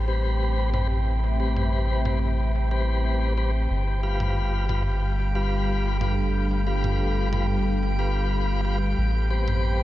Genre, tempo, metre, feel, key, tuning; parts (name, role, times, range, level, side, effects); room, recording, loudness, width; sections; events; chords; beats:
ambient dub; 91 BPM; 4/4; straight; A minor; A4 = 439 Hz
deep dark ambient pad; sustained chords; 0.0-9.8 s; G3 to E5; -31 LUFS; equal; chorus, built-in reverb
soft dub sub bass; bass; 0.0-9.8 s; G1 to A1; -24 LUFS; equal
drifting glass-harmonics texture; texture; 0.0-9.8 s; G5; -36 LUFS; right 2 dB; chorus, built-in reverb
tonewheel organ; stabs; 0.1-9.8 s; G3 to B4; -30 LUFS; left 2 dB; fast rotary speaker, dub echo
electronic toms; drums; 0.7-9.6 s; -34 LUFS; right 1 dB; low-pass filter on toms, low-pass filter on perc, low-pass filter on snare, dub echo
light reverb, digital ambience; -22 LUFS; side -15 dB against mid
0.0-9.8 A section
0.0 Am9; 3.7 G7; 9.0 Am9
0.41 | 1.06 1.72 2.38 3.04 | 3.70 4.36 5.02 5.68 | 6.34 7.00 7.66 8.32 | 8.98 9.64